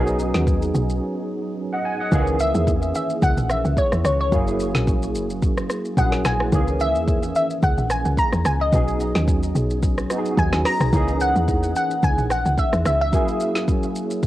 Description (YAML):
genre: amapiano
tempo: 109 BPM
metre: 4/4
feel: swing 55% on 16ths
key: C# dorian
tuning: A4 = 441 Hz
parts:
  - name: barky tine electric piano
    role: accompaniment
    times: 0.0-14.3 s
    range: D#3 to G#5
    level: -24 LUFS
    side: right 1 dB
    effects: ensemble chorus, cassette tape
  - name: woody log drum bass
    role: bass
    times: 0.0-13.1 s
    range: F#1 to E2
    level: -22 LUFS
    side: equal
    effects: none
  - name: deep house drum kit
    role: drums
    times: 0.1-14.3 s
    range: hi-hat, kick drum, rim click, shaker, snare drum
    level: -23 LUFS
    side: equal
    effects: cassette tape
  - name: glassy wavetable pluck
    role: melody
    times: 2.4-14.3 s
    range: C#5 to A#5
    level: -23 LUFS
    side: left 1 dB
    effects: chorus, cassette tape, tape echo
room: digital ambience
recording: home recording on cassette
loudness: -18 LUFS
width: side -15 dB against mid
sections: 0.0-14.3 A section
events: break 1.0-2.1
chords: 0.0 B69; 2.1 C#m69; 4.3 F#9; 6.5 C#m69; 8.7 B69; 10.9 C#m69; 13.1 F#9